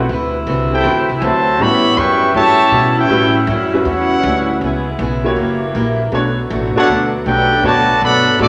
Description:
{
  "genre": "jazz",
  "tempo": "159 BPM",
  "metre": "4/4",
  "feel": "swing 67% on 8ths",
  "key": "A major",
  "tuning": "A4 = 440 Hz",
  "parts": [
    { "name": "bright upright piano", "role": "accompaniment", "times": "0.0-8.5 s", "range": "G3 to C#5", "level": "-22 LUFS", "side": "equal", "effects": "none" },
    { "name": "warm saxophone section", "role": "sustained chords", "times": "0.0-8.5 s", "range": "C3 to E4", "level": "-26 LUFS", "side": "equal", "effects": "none" },
    { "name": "upright bass", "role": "bass", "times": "0.0-8.5 s", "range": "F#1 to B2", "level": "-24 LUFS", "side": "equal", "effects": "none" },
    { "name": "fingerpicked steel-string acoustic guitar", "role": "accompaniment", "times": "0.1-8.5 s", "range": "A2 to B4", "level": "-24 LUFS", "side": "equal", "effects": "none" },
    { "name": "dark trumpet section", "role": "melody", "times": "0.7-8.5 s", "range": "B3 to C#6", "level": "-16 LUFS", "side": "equal", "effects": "none" },
    { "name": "mellow trombone section", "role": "second line", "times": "0.7-8.5 s", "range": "C3 to G4", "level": "-23 LUFS", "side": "equal", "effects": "none" }
  ],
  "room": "wet large studio reverb, RT60 1.3 s",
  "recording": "none",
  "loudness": "-14 LUFS",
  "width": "mono",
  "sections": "0.0-8.5 A section",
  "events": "none",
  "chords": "0.1 D13; 1.6 A13; 4.6 C#m7; 5.4 F#7b9; 6.1 Bm7",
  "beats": "| 0.09 0.46 0.84 1.22 | 1.59 1.97 2.35 2.73 | 3.10 3.48 3.86 4.24 | 4.61 4.99 5.37 5.74 | 6.12 6.50 6.88 7.25 | 7.63 8.01 8.39"
}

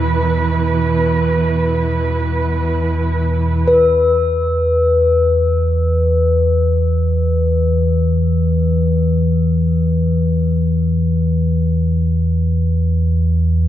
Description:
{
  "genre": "dark ambient drone",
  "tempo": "free time",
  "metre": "none",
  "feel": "none",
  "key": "unclear",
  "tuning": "A4 = 437 Hz",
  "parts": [
    { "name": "muted studio cello section", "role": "sustained chords", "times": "0.0-3.7 s", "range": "B2 to B4", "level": "-18 LUFS", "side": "right 2 dB", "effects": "none" },
    { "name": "deep rumbling drone", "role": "drone", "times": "0.0-13.7 s", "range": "E2 to E3", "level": "-15 LUFS", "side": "equal", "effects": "built-in reverb" },
    { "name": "bronze singing bowl", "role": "texture", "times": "0.0-13.7 s", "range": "B4", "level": "-19 LUFS", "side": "left 3 dB", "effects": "none" }
  ],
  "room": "wet spring reverb, RT60 2.5 s",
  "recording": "nothing above 7.5 kHz",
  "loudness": "-14 LUFS",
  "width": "side -12 dB against mid",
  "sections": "0.0-3.7 A section; 3.7-13.7 B section",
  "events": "none",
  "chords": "0.0 E5",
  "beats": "free time"
}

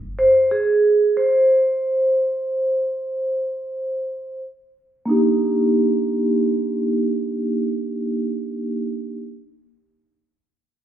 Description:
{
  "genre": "hip hop",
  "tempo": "free time",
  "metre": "none",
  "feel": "none",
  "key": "unclear",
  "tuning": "A4 = 442 Hz",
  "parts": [
    { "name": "vibraphone with soft mallets", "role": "accompaniment", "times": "0.2-9.2 s", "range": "Bb3 to C5", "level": "-18 LUFS", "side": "right 1 dB", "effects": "low-pass filter" }
  ],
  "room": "light reverb, studio reverb",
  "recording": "heard muffled through a wall, stone room reverb, EQ",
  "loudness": "-18 LUFS",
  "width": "side -10 dB against mid",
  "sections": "0.0-5.1 A section; 5.1-7.7 B section",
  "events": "vibraphone solo 0.0-5.1; filter sweep on vibraphone 0.0-5.1",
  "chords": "0.0 N.C.; 5.1 Ebmaj7/Bb",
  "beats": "free time"
}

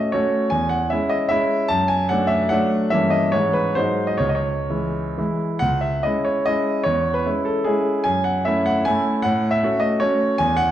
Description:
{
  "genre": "classical, romantic triple-time dance for piano with dotted rhythms",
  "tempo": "120-167 BPM",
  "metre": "3/4",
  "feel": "rubato",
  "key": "C# minor",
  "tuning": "A4 = 441 Hz",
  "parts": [
    { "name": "clear grand piano", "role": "solo", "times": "0.0-10.7 s", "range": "C#2 to A5", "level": "-18 LUFS", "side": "equal", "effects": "none" }
  ],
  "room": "wet recital hall reverb, RT60 1.4 s",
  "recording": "dark, warm production",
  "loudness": "-18 LUFS",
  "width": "side -11 dB against mid",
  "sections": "0.0-5.6 A section; 5.6-10.7 A section",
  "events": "none",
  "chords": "0.0 F#m/A; 0.5 C#m/E; 1.7 D/F#; 2.9 Gdim7; 3.3 C#m/G#; 3.8 G#7; 4.2 C#m; 6.9 C#m/E; 8.1 F#m7; 9.2 F#m/A",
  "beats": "0.15 | 0.52 0.91 1.31 | 1.70 2.10 2.51 | 2.91 3.33 3.77 | 4.21 4.70 5.18 | 5.62 6.04 6.46 | 6.86 7.26 7.67 | 8.06 8.46 8.88 | 9.25 9.62 10.02 | 10.39"
}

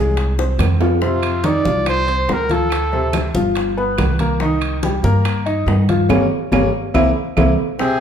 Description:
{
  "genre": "Afro-Cuban jazz",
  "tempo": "142 BPM",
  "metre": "4/4",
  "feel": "straight",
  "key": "C minor",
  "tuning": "A4 = 440 Hz",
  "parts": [
    { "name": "bright upright piano", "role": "accompaniment", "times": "0.0-8.0 s", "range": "C3 to Eb5", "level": "-20 LUFS", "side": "left 2 dB", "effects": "none" },
    { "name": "upright bass", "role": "bass", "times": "0.0-7.5 s", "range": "G1 to G2", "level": "-19 LUFS", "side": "equal", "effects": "none" },
    { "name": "bongos", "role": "percussion", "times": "0.2-8.0 s", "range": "none", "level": "-28 LUFS", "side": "left 4 dB", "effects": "none" },
    { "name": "congas", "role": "percussion", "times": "0.2-8.0 s", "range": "none", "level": "-25 LUFS", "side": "right 1 dB", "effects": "none" },
    { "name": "timbales", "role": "percussion", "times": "0.2-7.5 s", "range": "none", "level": "-24 LUFS", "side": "right 6 dB", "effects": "none" },
    { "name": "claves", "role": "percussion", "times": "0.6-7.5 s", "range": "none", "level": "-30 LUFS", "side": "right 10 dB", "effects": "none" },
    { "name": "clear trumpet", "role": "melody", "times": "1.0-3.4, 7.8-8.0 s", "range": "F4 to D5", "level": "-20 LUFS", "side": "right 1 dB", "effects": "none" },
    { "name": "warm tenor saxophone", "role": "second line", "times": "7.8-8.0 s", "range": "C4", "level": "-17 LUFS", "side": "right 1 dB", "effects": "none" }
  ],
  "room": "moderate large studio reverb, RT60 1.1 s",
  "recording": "band playing live in one room",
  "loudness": "-15 LUFS",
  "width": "side -8 dB against mid",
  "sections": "0.0-7.8 A section",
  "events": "drum fill 0.4-1.0, 7.2-7.8; band accent 6.1-7.8",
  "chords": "0.2 Fm/C; 1.0 F5; 2.7 Dm7; 3.6 G7; 4.4 Cm7; 6.1 Gdim; 6.9 C7",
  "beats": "0.18 0.60 | 1.02 1.45 1.87 2.29 | 2.72 3.14 3.56 3.99 | 4.41 4.83 5.25 5.68 | 6.10 6.52 6.95 7.37 | 7.79"
}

